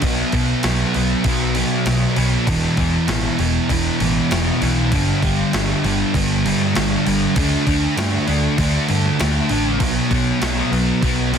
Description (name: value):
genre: rock, shoegaze and dream pop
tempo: 98 BPM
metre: 4/4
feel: straight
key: unclear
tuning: A4 = 440 Hz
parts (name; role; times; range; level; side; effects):
- fuzz guitar; riff; 0.0-11.4 s; E2 to D4; -18 LUFS; equal; distortion, lush chorus
- hollow-body short-scale fingered electric bass; bass; 0.0-11.4 s; E1 to G2; -23 LUFS; equal; none
- gated 80s digital drum machine; drums; 0.0-11.4 s; crash cymbal, kick drum, snare drum; -23 LUFS; equal; gated reverb, gated reverb snare, overdrive
room: light reverb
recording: dense, heavily limited modern master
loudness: -16 LUFS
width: side -7 dB against mid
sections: 0.0-11.4 A section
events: none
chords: 0.0 B5; 2.5 E5; 4.9 G5; 7.4 D5; 9.8 B5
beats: | 0.03 0.64 1.25 1.86 | 2.47 3.08 3.69 4.31 | 4.92 5.53 6.14 6.75 | 7.36 7.97 8.59 9.20 | 9.81 10.42 11.03